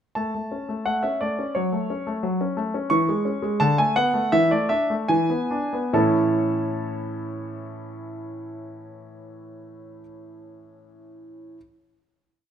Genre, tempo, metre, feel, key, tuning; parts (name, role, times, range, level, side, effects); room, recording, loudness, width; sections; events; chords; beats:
classical-period piano sonatina; 70-89 BPM; 2/4; rubato; A major; A4 = 440 Hz
clear concert grand piano; solo; 0.2-11.6 s; A2 to C#6; -22 LUFS; equal
moderate recital hall reverb, RT60 1.5 s; close, detailed microphones; -21 LUFS; side -8 dB against mid
0.2-5.9 A section; 5.9-9.3 final chord
slowing down 2.2-5.9
0.2 A; 1.5 F#m; 2.9 C#m/E; 3.6 Bm7/D; 4.3 E7sus4; 5.1 E7; 5.9 A
| 0.15 0.86 | 1.55 2.23 | 2.90 3.60 | 4.32 5.09 | 5.94 6.78 | 7.62 8.47